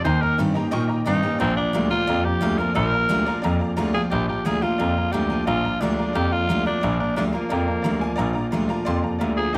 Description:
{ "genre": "rockabilly", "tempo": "177 BPM", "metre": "4/4", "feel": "straight", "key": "Bb mixolydian", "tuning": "A4 = 440 Hz", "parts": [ { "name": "breathy tenor saxophone", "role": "melody", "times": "0.0-9.6 s", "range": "Bb3 to C5", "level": "-27 LUFS", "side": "equal", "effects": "analog delay" }, { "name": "honky-tonk upright piano", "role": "accompaniment", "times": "0.0-9.6 s", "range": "D5 to Db6", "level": "-34 LUFS", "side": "equal", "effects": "none" }, { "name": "picked steel-string acoustic guitar", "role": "accompaniment", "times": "0.0-9.6 s", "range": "F2 to G4", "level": "-31 LUFS", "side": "equal", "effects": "none" }, { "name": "electric guitar through a small old amp", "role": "riff", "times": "0.0-9.6 s", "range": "Bb2 to C4", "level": "-29 LUFS", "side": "equal", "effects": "none" }, { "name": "warm grand piano", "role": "bass", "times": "0.1-9.6 s", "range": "Bb1 to Bb2", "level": "-27 LUFS", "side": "equal", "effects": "none" } ], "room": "light reverb", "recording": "none", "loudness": "-22 LUFS", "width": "mono", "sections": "0.0-4.1 A section; 4.1-9.6 B section", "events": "tenor saxophone solo 0.0-4.1; honky-tonk piano fill 3.6-4.1", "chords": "0.1 Eb7; 1.4 Bb7" }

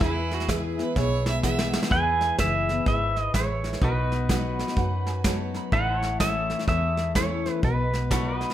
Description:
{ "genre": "honky-tonk and classic country", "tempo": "126 BPM", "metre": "4/4", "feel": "swing 63% on 8ths", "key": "E major", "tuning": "A4 = 441 Hz", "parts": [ { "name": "clear fiddle", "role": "second line", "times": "0.0-1.8 s", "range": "E4 to E5", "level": "-31 LUFS", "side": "right 4 dB", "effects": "none" }, { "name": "picked steel-string acoustic guitar", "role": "accompaniment", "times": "0.0-8.5 s", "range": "E2 to F#4", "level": "-32 LUFS", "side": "left 7 dB", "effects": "none" }, { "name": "tack piano", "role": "accompaniment", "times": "0.0-8.5 s", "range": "F#4 to D#6", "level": "-34 LUFS", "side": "right 6 dB", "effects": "none" }, { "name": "pedal steel guitar", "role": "sustained chords", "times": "0.0-8.5 s", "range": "D#4 to D#5", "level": "-36 LUFS", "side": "left 1 dB", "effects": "none" }, { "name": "vintage muted fingered electric bass", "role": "bass", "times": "0.0-8.4 s", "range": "F#1 to F#2", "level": "-28 LUFS", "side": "equal", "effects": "none" }, { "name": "soft brush drum kit", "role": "drums", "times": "0.0-8.5 s", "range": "hi-hat, kick drum, snare drum", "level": "-28 LUFS", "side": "equal", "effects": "none" }, { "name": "pedal steel guitar", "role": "melody", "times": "1.9-8.5 s", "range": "B4 to G#5", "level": "-27 LUFS", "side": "right 1 dB", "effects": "none" } ], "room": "moderate large studio reverb, RT60 0.9 s", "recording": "none", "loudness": "-22 LUFS", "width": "side -12 dB against mid", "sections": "0.0-1.9 A section; 1.9-8.5 B section", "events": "drum fill 1.0-1.9; honky-tonk piano fill 4.3-5.7", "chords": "0.0 E; 3.8 B; 5.7 A; 7.6 B" }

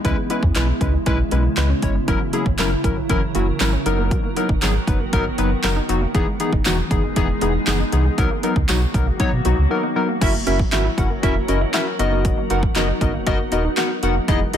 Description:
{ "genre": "dance-pop", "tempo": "118 BPM", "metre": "4/4", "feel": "straight", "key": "unclear", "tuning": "A4 = 440 Hz", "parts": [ { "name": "warm analog keys", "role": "accompaniment", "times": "0.0-14.6 s", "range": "E3 to F#5", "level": "-22 LUFS", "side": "left 2 dB", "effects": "chorus, sidechain pumping" }, { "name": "glassy FM pad", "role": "sustained chords", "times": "0.0-14.6 s", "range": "C#3 to A#4", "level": "-26 LUFS", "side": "equal", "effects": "ensemble chorus, built-in reverb, sidechain pumping" }, { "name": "wide unison pluck", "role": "arpeggios", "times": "0.0-14.6 s", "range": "E3 to F#4", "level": "-30 LUFS", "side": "right 3 dB", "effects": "sidechain pumping, dub echo" }, { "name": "sub bass with octave", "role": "bass", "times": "0.0-14.6 s", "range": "D#1 to B2", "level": "-21 LUFS", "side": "equal", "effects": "sidechain pumping" }, { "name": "pop drum kit", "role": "drums", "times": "0.0-14.6 s", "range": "crash cymbal, handclaps, hi-hat, kick drum, snare drum", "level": "-22 LUFS", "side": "equal", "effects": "overdrive" }, { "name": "tambourine", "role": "percussion", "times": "2.6-8.8 s", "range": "none", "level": "-33 LUFS", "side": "right 12 dB", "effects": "none" } ], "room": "little or no reverb", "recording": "none", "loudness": "-17 LUFS", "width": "side -9 dB against mid", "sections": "0.0-10.2 A section; 10.2-14.6 B section", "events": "break 9.7-10.2", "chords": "0.0 C#m7; 2.1 F#7; 3.9 Bmaj7/F#; 6.1 Emaj7; 8.2 Bmaj7; 10.2 F#7; 12.0 Bmaj7/F#" }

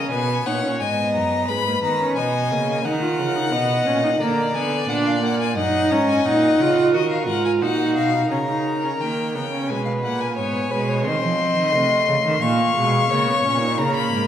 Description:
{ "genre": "classical, baroque-style fugue for string quartet", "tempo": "88 BPM", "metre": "4/4", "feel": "straight", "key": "unclear", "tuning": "A4 = 440 Hz", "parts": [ { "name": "rich violin", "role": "melody", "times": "0.0-14.3 s", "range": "D#5 to C#6", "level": "-24 LUFS", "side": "left 5 dB", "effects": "none" }, { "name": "rich violin", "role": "second line", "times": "0.0-14.3 s", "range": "F#4 to E#5", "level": "-24 LUFS", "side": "left 1 dB", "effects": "none" }, { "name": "rich viola", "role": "accompaniment", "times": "0.0-14.3 s", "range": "G#3 to F#4", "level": "-23 LUFS", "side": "right 2 dB", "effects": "none" }, { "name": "rich cello", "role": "bass", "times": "0.0-14.3 s", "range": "F#2 to F3", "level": "-25 LUFS", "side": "right 3 dB", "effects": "none" } ], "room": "wet recital hall reverb, RT60 1.8 s", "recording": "recorded in a church or concert hall", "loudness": "-18 LUFS", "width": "side -10 dB against mid", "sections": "0.0-8.3 A section; 8.3-14.3 B section", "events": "none", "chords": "0.1 G#m; 2.8 D#m; 4.2 A#7/D; 5.6 D#m/F#; 6.9 D#m; 8.3 D#7/C#; 9.7 G#m; 11.1 F7/Eb; 12.4 A#m" }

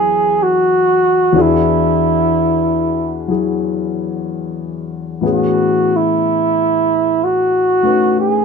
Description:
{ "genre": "jazz ballad", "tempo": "62 BPM", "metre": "4/4", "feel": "swing 68% on 8ths", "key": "E major", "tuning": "A4 = 438 Hz", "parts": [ { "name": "breathy flugelhorn", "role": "melody", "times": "0.0-8.4 s", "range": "E4 to G#4", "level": "-13 LUFS", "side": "right 2 dB", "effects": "none" }, { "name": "dark grand piano", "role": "accompaniment", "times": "0.0-8.4 s", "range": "E2 to B4", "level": "-18 LUFS", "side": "left 6 dB", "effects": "none" } ], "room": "moderate large studio reverb, RT60 0.9 s", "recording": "close, detailed microphones", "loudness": "-12 LUFS", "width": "side -5 dB against mid", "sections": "0.0-8.4 A section", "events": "none", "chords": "0.0 Emaj9; 1.4 E9; 5.2 Amaj9" }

